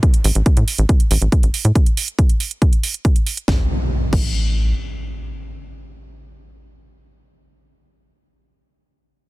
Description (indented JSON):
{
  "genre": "uplifting trance",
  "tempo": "139 BPM",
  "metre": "4/4",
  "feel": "straight",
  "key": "unclear",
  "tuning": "A4 = 439 Hz",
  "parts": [
    { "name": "electronic kick drum", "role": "drums", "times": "0.0-4.3 s", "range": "none", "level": "-14 LUFS", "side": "equal", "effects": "none" },
    { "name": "house drum kit", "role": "drums", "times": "0.0-4.3 s", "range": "crash cymbal, hi-hat, snare drum", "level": "-25 LUFS", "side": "right 4 dB", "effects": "none" },
    { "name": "downlifter and impact", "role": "sound effects", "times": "0.0, 3.5-8.2 s", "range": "none", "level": "-26 LUFS", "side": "equal", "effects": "none" },
    { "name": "tight sequencer bass", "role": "bass", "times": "0.2-4.7 s", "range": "A1 to A2", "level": "-16 LUFS", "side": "equal", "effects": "sidechain pumping" }
  ],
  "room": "little or no reverb",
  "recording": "dense, heavily limited modern master",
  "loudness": "-15 LUFS",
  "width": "side -20 dB against mid",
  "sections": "0.0-3.5 A section; 3.5-6.9 B section",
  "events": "none",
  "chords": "none",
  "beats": "| 0.03 0.46 0.89 1.32 | 1.75 2.19 2.62 3.05 | 3.48 3.91 4.34 4.77 | 5.21 5.64 6.07 6.50"
}